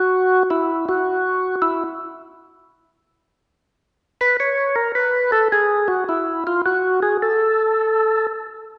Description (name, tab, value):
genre	jazz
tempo	107 BPM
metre	4/4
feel	swing 69% on 8ths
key	unclear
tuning	A4 = 439 Hz
part	percussive tonewheel organ	solo	0.0-8.3 s	E4 to C#5	-19 LUFS	equal	slow rotary speaker
room	wet scoring stage reverb, RT60 1.6 s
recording	recorded in a church or concert hall, nothing above 10.4 kHz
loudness	-19 LUFS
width	mono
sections	0.0-8.8 A section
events	tonewheel organ solo 0.0-8.8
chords	none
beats	| 0.45 1.01 1.57 2.13 | 2.69 3.25 3.81 4.36 | 4.92 5.48 6.04 6.60 | 7.16 7.71